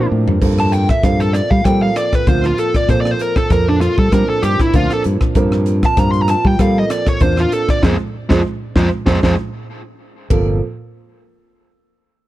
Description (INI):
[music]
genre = electric jazz fusion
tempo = 97 BPM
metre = 4/4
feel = swing 54% on 16ths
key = G minor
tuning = A4 = 440 Hz
[part]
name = dark smooth lead guitar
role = melody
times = 0.0-9.3 s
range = D4 to C6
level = -19 LUFS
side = equal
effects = overdrive
[part]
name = clear baby grand piano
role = accompaniment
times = 0.0-10.6 s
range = F3 to Bb4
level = -21 LUFS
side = right 5 dB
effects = none
[part]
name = modern bright fingered electric bass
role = bass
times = 0.0-10.6 s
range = G1 to G3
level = -16 LUFS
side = left 1 dB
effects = none
[part]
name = crisp fusion drum kit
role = drums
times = 0.3-10.5 s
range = crash cymbal, hi-hat, kick drum, ride cymbal, rim click, snare drum, toms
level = -18 LUFS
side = equal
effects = none
[sound]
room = studio reverb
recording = none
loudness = -13 LUFS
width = side -15 dB against mid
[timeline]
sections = 0.4-10.3 A section; 10.3-12.3 B section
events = drum fill 0.0-0.4, 9.1-10.3; lead electric guitar solo 0.4-10.3; band accent 7.8-10.3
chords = 0.4 Gm11; 7.8 Fm; 10.3 Gm11